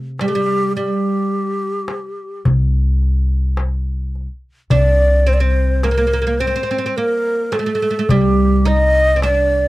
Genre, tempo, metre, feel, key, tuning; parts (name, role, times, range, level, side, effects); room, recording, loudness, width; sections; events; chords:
Turkish makam ensemble; 106 BPM (eighths); 10/8; straight; C makam huseyni; A4 = 441 Hz
upright bass; bass; 0.0-9.7 s; C2 to C3; -17 LUFS; equal
breathy bright low ney; melody; 0.2-9.7 s; G4 to Eb5-21c; -18 LUFS; equal
oud; second line; 0.2-9.7 s; G3 to Eb4; -20 LUFS; right 3 dB; slapback echo
darbuka; percussion; 0.2-9.5 s; -19 LUFS; left 1 dB
light reverb; dry, close 1970s-style studio recording; -14 LUFS; side -18 dB against mid
0.0-9.7 A section